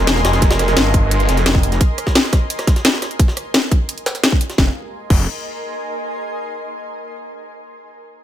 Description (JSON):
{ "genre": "dark technical drum and bass", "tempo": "173 BPM", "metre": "4/4", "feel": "straight", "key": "F minor", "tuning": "A4 = 440 Hz", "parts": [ { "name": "snarling distorted saw bass", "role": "bass", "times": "0.0-1.8, 4.6-5.3 s", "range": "F1 to G1", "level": "-17 LUFS", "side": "equal", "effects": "overdrive" }, { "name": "granular cloud pad", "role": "texture", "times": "0.0-5.9 s", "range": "Bb4 to C6", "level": "-24 LUFS", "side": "equal", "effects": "built-in reverb, sidechain pumping" }, { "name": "drum and bass drum kit", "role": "drums", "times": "0.1-5.2 s", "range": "crash cymbal, hi-hat, rim click, snare drum", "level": "-18 LUFS", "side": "left 1 dB", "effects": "overdrive, studio reverb" }, { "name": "jungle sampler-style drum kit", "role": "drums", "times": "0.1-4.6 s", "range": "hi-hat, snare drum", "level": "-24 LUFS", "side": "equal", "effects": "high-pass filter on hats, studio reverb, high-pass filter on snare" }, { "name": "electronic kick drum", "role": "drums", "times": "0.4-5.2 s", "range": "none", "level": "-15 LUFS", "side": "equal", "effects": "studio reverb" } ], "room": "digital ambience", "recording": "none", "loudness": "-14 LUFS", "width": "side -11 dB against mid", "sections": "0.0-4.6 A section; 4.6-6.0 B section", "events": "fade-out on ambient pad 0.0-4.6", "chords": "0.0 Fmadd9" }